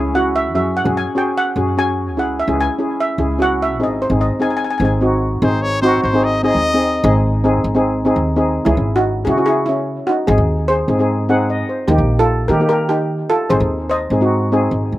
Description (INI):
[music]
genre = calypso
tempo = 148 BPM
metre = 4/4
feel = straight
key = unclear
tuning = A4 = 440 Hz
[part]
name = steel pan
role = accompaniment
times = 0.0-14.9 s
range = A#3 to F#5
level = -17 LUFS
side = equal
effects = slapback echo
[part]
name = upright bass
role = bass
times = 0.0-15.0 s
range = G#1 to D#3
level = -20 LUFS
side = equal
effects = none
[part]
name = steel pan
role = melody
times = 0.2-4.9, 8.7-14.3 s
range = C#4 to G#5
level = -18 LUFS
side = equal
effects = slapback echo
[part]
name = warm trumpet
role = second line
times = 5.4-7.2 s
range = B#4 to D#5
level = -19 LUFS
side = left 2 dB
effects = none
[sound]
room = little or no reverb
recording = recorded outdoors, with no room sound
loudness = -14 LUFS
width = side -15 dB against mid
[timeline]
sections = 0.0-5.4 A section; 5.4-8.7 B section; 8.7-15.0 C section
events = steel pan solo 0.0-5.4; steel pan fill 11.1-11.9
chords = 0.0 C#m; 0.6 F#sus2; 2.2 C#m; 3.8 G#; 8.7 C#m; 10.3 G#; 11.9 D#; 13.5 G#